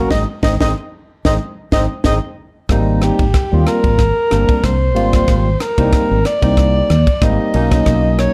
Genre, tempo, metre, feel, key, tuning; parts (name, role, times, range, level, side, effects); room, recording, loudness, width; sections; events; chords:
electric jazz fusion; 93 BPM; 4/4; swing 54% on 16ths; Ab lydian; A4 = 440 Hz
breathy soprano saxophone; melody; 0.0-8.3 s; G4 to Eb5; -21 LUFS; equal; slapback echo, plate reverb
hollow concert flute; second line; 0.0-2.2 s; A#5 to Eb6; -28 LUFS; equal
barky tine electric piano; accompaniment; 0.0-8.3 s; F#3 to F#4; -21 LUFS; equal; analog chorus
mellow fretless electric bass; bass; 0.0-8.3 s; G1 to Eb2; -19 LUFS; equal; lush chorus
crisp fusion drum kit; drums; 0.1-8.3 s; kick drum, ride cymbal, rim click, snare drum; -20 LUFS; equal
light reverb; -15 LUFS; mono
0.0-2.7 A section; 2.7-8.3 B section
band accent 0.1-2.7; drum fill 2.4-2.7; soprano saxophone solo 2.7-8.3
0.1 Ab; 2.7 Abmaj9; 7.5 Bmaj9